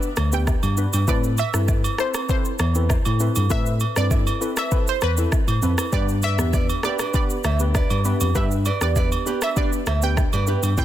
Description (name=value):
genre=afrobeats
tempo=99 BPM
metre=4/4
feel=straight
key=unclear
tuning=A4 = 440 Hz
part: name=analog pluck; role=melody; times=0.0-10.8 s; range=B4 to G5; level=-29 LUFS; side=right 2 dB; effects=chorus, ping-pong delay
part: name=warm analog keys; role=accompaniment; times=0.0-10.8 s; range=B3 to B4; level=-28 LUFS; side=left 1 dB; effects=chorus
part: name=afro-pop drum kit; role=drums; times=0.0-10.8 s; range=kick drum, rim click, shaker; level=-24 LUFS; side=equal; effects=soft clipping on snare
part: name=tine electric piano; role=bass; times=0.2-10.8 s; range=D2 to A2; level=-21 LUFS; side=equal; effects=analog chorus
part: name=agogo bells and woodblock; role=percussion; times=0.2-10.8 s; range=none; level=-31 LUFS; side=right 6 dB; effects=none
part: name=nylon-string guitar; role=riff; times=5.9-10.8 s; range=D4 to E5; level=-30 LUFS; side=right 6 dB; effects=ping-pong delay
room=little or no reverb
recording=dense, heavily limited modern master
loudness=-19 LUFS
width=side -12 dB against mid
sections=0.0-10.8 A section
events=none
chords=0.0 G; 1.1 Amadd9; 5.9 G